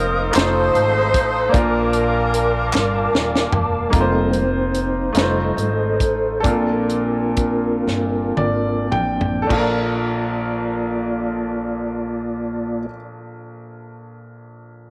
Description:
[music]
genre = slow gospel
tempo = 34-50 BPM (dotted quarters)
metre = 6/8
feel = straight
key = Bb major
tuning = A4 = 440 Hz
[part]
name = edgy saxophone section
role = melody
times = 0.0-3.5 s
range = C4 to C5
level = -23 LUFS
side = equal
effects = tape echo
[part]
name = bright baby grand piano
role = accompaniment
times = 0.0-14.9 s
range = Bb1 to G5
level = -26 LUFS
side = equal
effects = none
[part]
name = mellow tonewheel organ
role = sustained chords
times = 0.0-12.9 s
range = F3 to Eb6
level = -24 LUFS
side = equal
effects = fast rotary speaker, chorus vibrato
[part]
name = upright bass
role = bass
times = 0.0-12.9 s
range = Eb1 to Bb1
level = -28 LUFS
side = equal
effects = none
[part]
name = tight funk drum kit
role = drums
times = 0.3-9.8 s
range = crash cymbal, hi-hat, kick drum, snare drum, toms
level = -24 LUFS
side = equal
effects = none
[part]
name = group handclap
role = percussion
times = 0.3-3.1 s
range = none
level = -29 LUFS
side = equal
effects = none
[sound]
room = moderate spring reverb, RT60 2.3 s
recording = none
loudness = -19 LUFS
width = mono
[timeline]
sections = 0.0-3.9 A section; 3.9-9.5 B section; 9.5-13.1 C section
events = drum fill 2.7-3.9, 7.9-9.5; slowing down 3.9-9.5; tonewheel organ solo 3.9-9.5; grand piano fill 7.9-9.5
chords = 0.3 F7; 1.5 Bbmaj7; 3.9 F7sus4; 5.1 F7; 6.4 Bbmaj7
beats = 0.34 | 1.54 2.73 | 3.93 5.15 | 6.44 7.86 | 9.50 11.29

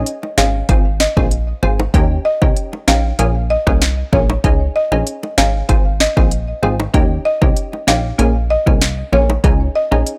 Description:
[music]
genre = dancehall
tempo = 96 BPM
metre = 4/4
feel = straight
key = unclear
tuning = A4 = 438 Hz
[part]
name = wavetable chord stab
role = accompaniment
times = 0.0-10.2 s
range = Bb3 to Ab4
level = -23 LUFS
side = equal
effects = none
[part]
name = plucky analog bass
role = bass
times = 0.0-10.0 s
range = Ab1 to Eb2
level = -20 LUFS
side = equal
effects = none
[part]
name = afro-pop drum kit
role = drums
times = 0.1-10.2 s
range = hi-hat, kick drum, rim click, snare drum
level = -18 LUFS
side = equal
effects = none
[part]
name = bongos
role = percussion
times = 0.2-10.1 s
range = none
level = -26 LUFS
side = equal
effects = none
[part]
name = buzzing marimba with medium hard mallets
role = melody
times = 0.4-9.9 s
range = Db5 to F5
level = -22 LUFS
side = equal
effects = tape echo
[sound]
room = digital ambience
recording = dry, gritty hardware recording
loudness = -15 LUFS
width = mono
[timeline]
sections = 0.0-10.2 A section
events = none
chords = 0.0 Dbsus2; 0.7 Ab6; 1.9 Eb7; 3.2 Bbm7; 4.4 Dbsus2; 5.7 Ab6; 6.9 Eb7; 8.2 Bbm7; 9.4 Dbsus2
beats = 0.07 0.69 1.32 | 1.94 2.57 3.19 3.82 | 4.44 5.07 5.69 6.32 | 6.94 7.57 8.19 8.82 | 9.44 10.07

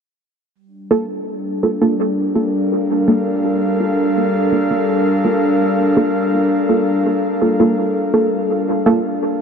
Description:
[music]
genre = ambient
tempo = 83 BPM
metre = 4/4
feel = straight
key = G minor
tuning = A4 = 436 Hz
[part]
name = airy breathy pad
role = sustained chords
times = 1.1-9.4 s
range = G3 to F5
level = -16 LUFS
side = left 1 dB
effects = chorus
[part]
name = filtered dub chord stab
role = stabs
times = 0.9-9.0 s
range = Bb3 to A4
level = -19 LUFS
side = right 2 dB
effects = chorus, dub echo
[sound]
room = wet huge ambient reverb, RT60 7.2 s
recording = dark, warm production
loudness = -14 LUFS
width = side -6 dB against mid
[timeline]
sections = 0.5-9.4 A section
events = filter sweep on analog synth pad 0.5-9.4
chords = 0.5 Gm9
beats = | 0.55 1.27 1.99 2.72 | 3.44 4.16 4.88 5.61 | 6.33 7.05 7.78 8.50 | 9.22

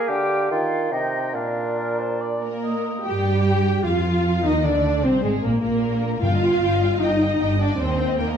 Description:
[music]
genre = classical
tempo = 136-155 BPM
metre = 4/4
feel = straight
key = Eb major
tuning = A4 = 440 Hz
[part]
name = bright clarinet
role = second line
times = 0.0-2.6 s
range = D4 to G4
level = -27 LUFS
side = left 2 dB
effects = none
[part]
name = dark cor anglais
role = second line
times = 0.0-3.1 s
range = Bb4 to G5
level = -30 LUFS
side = right 3 dB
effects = none
[part]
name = hollow concert flute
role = second line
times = 0.0-2.6 s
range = D5 to G5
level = -29 LUFS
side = left 1 dB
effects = none
[part]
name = warm bassoon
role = accompaniment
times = 0.0-2.8 s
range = Bb2 to Bb3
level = -26 LUFS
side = right 3 dB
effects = none
[part]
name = warm symphonic violin section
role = second line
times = 2.4-8.4 s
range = Ab4 to G5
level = -27 LUFS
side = left 3 dB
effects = none
[part]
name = warm studio viola section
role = accompaniment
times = 2.4-8.4 s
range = Ab3 to G4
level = -22 LUFS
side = equal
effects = none
[part]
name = rich symphonic violin section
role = melody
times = 3.0-8.4 s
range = Ab3 to G5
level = -31 LUFS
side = left 4 dB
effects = none
[part]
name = warm symphonic cello section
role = bass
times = 3.1-8.4 s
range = Eb2 to G3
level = -25 LUFS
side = right 1 dB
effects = none
[part]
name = warm symphonic double bass section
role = bass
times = 3.1-8.4 s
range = G1 to G2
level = -25 LUFS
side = right 3 dB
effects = none
[part]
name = timpani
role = percussion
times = 6.2-6.8 s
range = G2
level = -27 LUFS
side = left 2 dB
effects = none
[sound]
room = wet recital hall reverb, RT60 1.5 s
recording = dark, warm production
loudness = -19 LUFS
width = side -8 dB against mid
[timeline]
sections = 0.0-3.1 A section; 3.1-8.4 B section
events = none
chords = 0.0 Bb; 0.5 Eb; 1.3 Bb; 3.1 Eb/G; 4.6 Bb7; 6.2 Eb/G; 7.8 Eb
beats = 0.09 0.51 0.93 | 1.35 1.78 2.20 2.63 | 3.06 3.46 3.86 4.25 | 4.65 5.04 5.43 5.83 | 6.23 6.62 7.01 7.40 | 7.79 8.19

